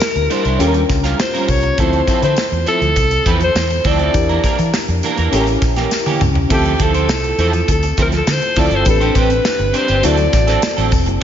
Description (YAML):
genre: polished 1980s jazz-funk pop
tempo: 102 BPM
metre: 4/4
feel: straight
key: D minor from 6.5 s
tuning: A4 = 439 Hz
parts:
  - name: breathy alto saxophone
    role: melody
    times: 0.0-10.9 s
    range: G4 to D5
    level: -18 LUFS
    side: left 1 dB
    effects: slapback echo
  - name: FM electric piano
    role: accompaniment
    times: 0.0-11.2 s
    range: C4 to B4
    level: -22 LUFS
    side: left 2 dB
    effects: lush chorus, slapback echo
  - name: electric guitar at the edge of break-up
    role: riff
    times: 0.0-11.2 s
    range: E3 to C5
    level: -20 LUFS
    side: right 5 dB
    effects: ensemble chorus, slapback echo
  - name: modern studio drum kit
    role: drums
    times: 0.0-11.2 s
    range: crash cymbal, hi-hat, kick drum, snare drum, toms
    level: -19 LUFS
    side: equal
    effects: none
  - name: tambourine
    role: percussion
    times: 0.0-11.1 s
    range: none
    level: -31 LUFS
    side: left 8 dB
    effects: none
  - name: vintage muted fingered electric bass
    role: bass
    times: 0.2-11.2 s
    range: E1 to E3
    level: -18 LUFS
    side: equal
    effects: none
room: moderate lush hall reverb, RT60 2.6 s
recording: big arena sound, nothing above 7.5 kHz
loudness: -13 LUFS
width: side -9 dB against mid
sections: 0.0-6.5 A section; 6.5-11.2 B section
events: drum fill 5.9-6.5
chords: 0.0 Em7b5; 0.6 Eb9; 1.8 Dm9; 4.1 Em7b5; 5.3 A7b9; 6.5 Dm9; 8.9 Am11; 10.0 D7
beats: 0.01 0.60 1.19 | 1.78 2.37 2.96 3.55 | 4.14 4.74 5.33 5.92 | 6.50 7.09 7.68 8.27 | 8.86 9.45 10.04 10.63 | 11.22